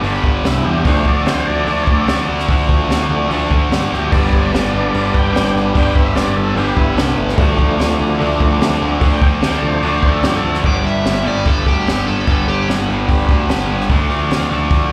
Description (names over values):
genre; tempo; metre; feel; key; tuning
classic rock; 147 BPM; 4/4; straight; unclear; A4 = 441 Hz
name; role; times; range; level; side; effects
tonewheel organ; sustained chords; 0.0-14.9 s; F3 to G5; -25 LUFS; equal; overdrive, fast rotary speaker, plate reverb
sludgy distorted guitar; riff; 0.0-14.9 s; G2 to D4; -26 LUFS; equal; overdrive, slapback echo
tight distorted guitar; riff; 0.0-14.9 s; G2 to D4; -22 LUFS; equal; distortion, slapback echo
fuzz picked electric bass; bass; 0.0-14.9 s; G1 to G2; -22 LUFS; equal; overdrive
jazz brush drum kit; drums; 0.0-14.8 s; hi-hat, kick drum, snare drum; -19 LUFS; equal; none
mellow reed electric piano; accompaniment; 4.1-10.6 s; D4 to D5; -29 LUFS; equal; none
biting overdriven guitar; second line; 10.7-12.7 s; G4 to E5; -24 LUFS; equal; spring reverb
room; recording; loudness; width
light reverb; live gig heard through the venue's PA, club reverb; -15 LUFS; mono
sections
0.0-10.6 A section; 10.6-14.9 B section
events
tonewheel organ solo 0.0-10.6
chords
0.0 G; 0.8 Dm; 4.1 G; 7.4 Dm; 10.6 G; 13.9 Dm